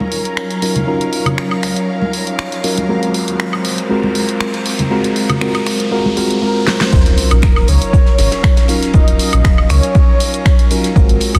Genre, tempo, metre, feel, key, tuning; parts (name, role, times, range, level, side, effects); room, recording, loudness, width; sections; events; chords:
deep house; 119 BPM; 4/4; swing 54% on 16ths; Eb dorian; A4 = 441 Hz
warbly tape-like pad; sustained chords; 0.0-11.4 s; Gb3 to Bb5; -28 LUFS; equal; chorus, built-in reverb, phaser, sidechain pumping
mellow FM electric piano; stabs; 0.0-11.4 s; Gb3 to Bb4; -21 LUFS; equal; chorus, tremolo, cassette tape, sidechain pumping, low-pass filter, delay
congas; percussion; 0.0-6.1 s; -24 LUFS; equal
riser and sub drop; sound effects; 0.5-8.9 s; -27 LUFS; equal
clear studio string section; texture; 0.0-11.4 s; Gb3 to F5; -31 LUFS; equal
soft string machine; texture; 0.0-11.4 s; Bb4 to Bb5; -32 LUFS; equal; phaser, ensemble chorus, sidechain pumping
sub bass with octave; bass; 0.1-11.4 s; Eb1 to Eb2; -17 LUFS; equal; sidechain pumping, high-pass filter
deep house drum kit; drums; 0.1-11.4 s; crash cymbal, finger snaps, hi-hat, shaker, snare drum, woodblock; -23 LUFS; equal; soft clipping on snare
breathy flute-like synth lead; melody; 6.4-10.7 s; Bb4 to Eb5; -24 LUFS; equal; ensemble chorus, tape echo
damped 70s drum kit; drums; 6.9-11.4 s; ride cymbal, snare drum; -34 LUFS; equal
electronic kick drum; drums; 6.9-11.1 s; -13 LUFS; equal
light reverb, studio reverb; dense, heavily limited modern master, vinyl crackle; -14 LUFS; mono
0.0-6.9 A section; 6.9-11.4 B section
build-up 0.0-6.9; filter sweep on FM electric piano 0.0-6.9; riser 0.5-6.9; drum fill 6.7; drop 6.9-11.4; impact 6.9-8.9
0.0 Ebm9; 2.9 Ab13; 6.9 Ebm9